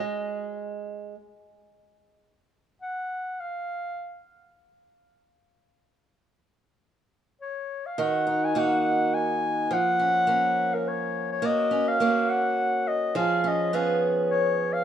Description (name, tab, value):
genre	folk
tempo	104 BPM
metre	3/4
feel	straight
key	unclear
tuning	A4 = 440 Hz
part	warm clarinet	melody	0.0-4.3, 7.4-14.8 s	A#4 to G#5	-25 LUFS	left 2 dB	none
part	picked old ladder-braced acoustic guitar	arpeggios	0.0-1.1, 8.0-14.8 s	D#3 to G#4	-26 LUFS	right 3 dB	none
room	light reverb, studio ambience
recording	rough home demo mix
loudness	-23 LUFS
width	side -10 dB against mid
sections	0.0-1.1 A section; 1.1-8.0 B section; 8.0-14.8 A section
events	none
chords	0.0 N.C.; 8.0 D#madd11; 9.7 F#maj7; 11.4 D#m9/A#; 13.1 C#7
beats	0.51 | 1.08 1.66 2.23 | 2.81 3.38 3.96 | 4.53 5.11 5.68 | 6.26 6.83 7.41 | 7.98 8.56 9.13 | 9.71 10.28 10.85 | 11.42 11.99 12.57 | 13.14 13.71 14.29